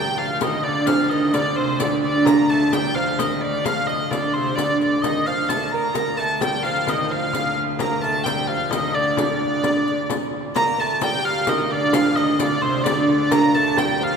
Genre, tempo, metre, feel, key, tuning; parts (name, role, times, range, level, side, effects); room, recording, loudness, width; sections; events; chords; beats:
medieval dance; 130 BPM; 3/4; straight; D phrygian; A4 = 438 Hz
clear hurdy-gurdy; melody; 0.0-14.2 s; C5 to Bb5; -22 LUFS; equal
lute; second line; 0.0-14.2 s; C3 to Bb3; -22 LUFS; right 3 dB
rich viola da gamba; drone; 0.0-14.2 s; D2; -30 LUFS; left 4 dB
frame drum; percussion; 0.4-14.0 s; -29 LUFS; left 3 dB
riq; percussion; 0.4-14.0 s; -31 LUFS; left 3 dB
wet cathedral reverb, RT60 4.7 s; minimal, uncompressed stereo recording; -18 LUFS; side -6 dB against mid
0.0-10.6 A section; 10.6-14.2 A section
0.43 | 0.89 1.35 1.81 | 2.27 2.73 3.19 | 3.66 4.12 4.58 | 5.04 5.50 5.96 | 6.42 6.88 7.34 | 7.80 8.26 8.72 | 9.18 9.64 10.10 | 10.56 11.02 11.48 | 11.94 12.40 12.86 | 13.32 13.78